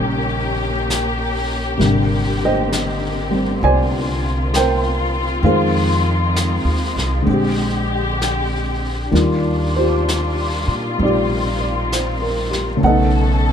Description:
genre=jazz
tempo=65 BPM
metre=4/4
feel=swing 66% on 8ths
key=unclear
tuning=A4 = 439 Hz
part: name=dark baby grand piano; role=accompaniment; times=0.0-13.5 s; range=C3 to Ab5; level=-19 LUFS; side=equal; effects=none
part: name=muted studio string section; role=sustained chords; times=0.0-13.5 s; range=D3 to A4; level=-22 LUFS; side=left 2 dB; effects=none
part: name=upright bass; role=bass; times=0.0-13.5 s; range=Ab1 to Bb2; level=-21 LUFS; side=equal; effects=none
part: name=vintage brush drum kit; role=drums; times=0.9-13.5 s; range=brushed snare drum, hi-hat, snare drum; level=-28 LUFS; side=left 1 dB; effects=none
room=little or no reverb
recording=close, detailed microphones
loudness=-16 LUFS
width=side -8 dB against mid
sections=0.0-13.5 A section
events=none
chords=0.0 Eb7; 1.8 Abmaj9#11; 5.4 Fm7; 7.3 Bb13; 9.1 Ebmaj9; 12.8 B9

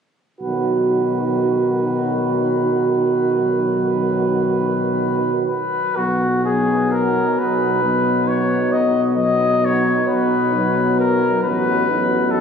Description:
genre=classical, hymn-like piece for brass band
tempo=44 BPM (dotted quarters)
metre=12/8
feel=rubato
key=B major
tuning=A4 = 440 Hz
part: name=warm cornet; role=melody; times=0.4-12.4 s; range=F#4 to D#5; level=-21 LUFS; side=left 3 dB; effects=none
part: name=mellow French horn section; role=second line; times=0.4-12.4 s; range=D#4 to F#4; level=-23 LUFS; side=right 6 dB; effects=none
part: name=dark trombone section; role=accompaniment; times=0.4-12.4 s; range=F#3 to B3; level=-25 LUFS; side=left 4 dB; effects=none
part: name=warm euphonium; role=accompaniment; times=0.4-12.4 s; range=D#3 to F#3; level=-24 LUFS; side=right 3 dB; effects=none
part: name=mellow tuba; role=bass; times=0.4-12.4 s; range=A1 to B1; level=-23 LUFS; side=left 2 dB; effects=none
room=moderate cathedral reverb, RT60 5.8 s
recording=recorded on a phone in the room, club reverb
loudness=-16 LUFS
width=side -7 dB against mid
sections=0.4-6.0 A section; 6.0-12.4 B section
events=none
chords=0.4 B; 11.4 B7/A

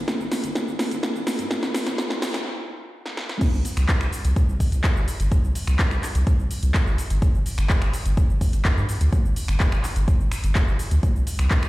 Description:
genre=progressive house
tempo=126 BPM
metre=4/4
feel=straight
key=unclear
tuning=A4 = 440 Hz
part: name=saturated sub bass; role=bass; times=0.0-11.7 s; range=G1 to G2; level=-22 LUFS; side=equal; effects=sidechain pumping
part: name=deep house drum kit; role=drums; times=0.1-11.7 s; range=crash cymbal, finger snaps, handclaps, hi-hat, shaker, snare drum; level=-27 LUFS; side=equal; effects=overdrive
part: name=electronic kick drum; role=drums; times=0.1-11.6 s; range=none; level=-21 LUFS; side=equal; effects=high-pass filter on kick
room=light reverb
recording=played on a big sound system in a bare room, large studio reverb, high-pass filter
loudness=-20 LUFS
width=side -18 dB against mid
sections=0.0-3.4 A section; 3.4-11.7 B section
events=build-up 0.0-3.4; drum fill 0.0-2.5, 3.1-3.4; filter sweep 0.0-3.4; stop 2.5-3.4; drop 3.4-11.7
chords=none

